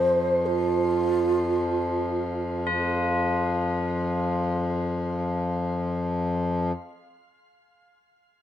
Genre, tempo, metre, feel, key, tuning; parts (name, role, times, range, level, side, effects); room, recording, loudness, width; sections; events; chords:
world meditative, free-time meditation music; free time; A4 = 440 Hz
breathy mellow low xiao; melody; 0.0-2.5 s; F4 to C5; -24 LUFS; right 3 dB; shimmer reverb, analog delay
hand-pumped harmonium; drone; 0.0-6.7 s; F2; -26 LUFS; left 2 dB
tubular bells; texture; 0.0-6.7 s; F4 to Bb4; -32 LUFS; left 2 dB; shimmer reverb
wet spring reverb, RT60 1.2 s; echo-heavy mix; -23 LUFS; side -11 dB against mid
0.0-2.7 A section; 2.7-6.8 B section